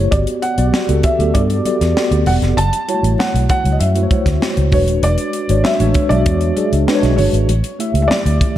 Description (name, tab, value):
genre	polished 1980s jazz-funk pop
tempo	98 BPM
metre	4/4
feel	straight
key	unclear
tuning	A4 = 443 Hz
part	mellow tine electric piano	accompaniment	0.0-8.6 s	G3 to E5	-18 LUFS	equal	fast stereo tremolo, analog chorus
part	vintage muted fingered electric bass	bass	0.0-8.4 s	Eb1 to G2	-16 LUFS	equal	none
part	felt-muted upright piano	melody	0.1-8.6 s	C#5 to A5	-21 LUFS	right 1 dB	none
part	crisp fusion drum kit	drums	0.1-8.6 s	hi-hat, kick drum, snare drum	-20 LUFS	equal	none
part	congas	percussion	0.1-8.6 s	none	-28 LUFS	right 1 dB	none
room	light reverb, small room ambience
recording	dark, warm production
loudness	-13 LUFS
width	side -12 dB against mid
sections	0.0-8.6 A section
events	none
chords	0.1 Gmaj7; 2.6 F#m7; 4.7 E13; 7.5 A7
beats	| 0.12 0.73 1.35 1.96 | 2.57 3.19 3.80 4.42 | 5.03 5.64 6.26 6.87 | 7.49 8.10